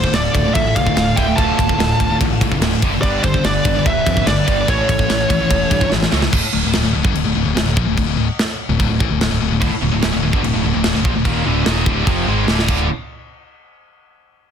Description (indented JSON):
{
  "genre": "heavy metal",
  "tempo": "146 BPM",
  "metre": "4/4",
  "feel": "straight",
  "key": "D dorian, D minor from 6.3 s",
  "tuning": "A4 = 440 Hz",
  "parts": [
    { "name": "high-gain lead guitar", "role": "melody", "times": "0.0-5.9 s", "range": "C5 to A5", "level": "-20 LUFS", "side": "right 1 dB", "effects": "distortion, digital delay" },
    { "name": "high-gain lead guitar", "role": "second line", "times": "0.0-5.9 s", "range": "A4 to F5", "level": "-29 LUFS", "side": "right 4 dB", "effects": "distortion, digital delay" },
    { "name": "fuzz guitar", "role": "riff", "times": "0.0-12.9 s", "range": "D2 to A4", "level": "-24 LUFS", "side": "equal", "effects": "distortion" },
    { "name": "scooped high-gain guitar", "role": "riff", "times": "0.0-12.9 s", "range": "D2 to A3", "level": "-21 LUFS", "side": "left 10 dB", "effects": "distortion" },
    { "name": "tight distorted guitar", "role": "riff", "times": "0.0-6.3, 9.6-12.9 s", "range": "D2 to A3", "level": "-23 LUFS", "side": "right 10 dB", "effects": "distortion" },
    { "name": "modern bright picked electric bass", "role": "bass", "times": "0.0-12.9 s", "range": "D1 to G2", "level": "-22 LUFS", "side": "equal", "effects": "none" },
    { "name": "tight metal drum kit", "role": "drums", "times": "0.0-12.8 s", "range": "crash cymbal, kick drum, ride cymbal, snare drum", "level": "-19 LUFS", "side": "equal", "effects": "none" }
  ],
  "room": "small room ambience",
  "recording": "dense, heavily limited modern master",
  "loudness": "-14 LUFS",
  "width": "side -8 dB against mid",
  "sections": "0.0-6.3 A section; 6.3-12.9 B section; 12.9-14.5 C section",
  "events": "drum fill 5.9-6.3, 12.5-12.9",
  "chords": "0.0 Dm; 3.0 G; 4.7 A; 6.3 Dm; 12.9 N.C."
}